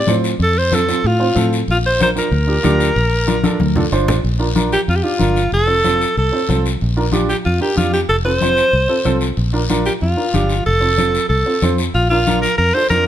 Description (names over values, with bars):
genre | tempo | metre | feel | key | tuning
latin, cumbia | 187 BPM | 4/4 | straight | Bb major | A4 = 441 Hz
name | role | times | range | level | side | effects
bright alto saxophone | melody | 0.0-13.0 s | F4 to D5 | -17 LUFS | equal | none
warm upright piano | accompaniment | 0.1-13.1 s | C4 to C5 | -21 LUFS | right 2 dB | none
fingered electric bass | bass | 0.1-13.1 s | F1 to A2 | -18 LUFS | equal | none
congas | percussion | 0.1-13.1 s | none | -23 LUFS | left 3 dB | none
guiro | percussion | 0.1-13.1 s | none | -28 LUFS | left 6 dB | none
room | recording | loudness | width
light reverb | close, detailed microphones | -13 LUFS | side -11 dB against mid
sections
0.0-4.2 A section; 4.2-13.1 B section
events
drum fill 3.4-4.2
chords
0.0 F; 1.7 Bb; 5.5 F; 6.8 Bb; 8.1 F; 9.4 Bb; 10.7 F; 11.9 Bb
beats
0.08 | 0.40 0.72 1.04 1.36 | 1.68 2.00 2.32 2.64 | 2.96 3.28 3.60 3.92 | 4.25 4.57 4.89 5.21 | 5.53 5.85 6.17 6.49 | 6.81 7.13 7.45 7.78 | 8.10 8.42 8.74 9.06 | 9.38 9.70 10.02 10.34 | 10.66 10.98 11.30 11.62 | 11.94 12.26 12.58 12.90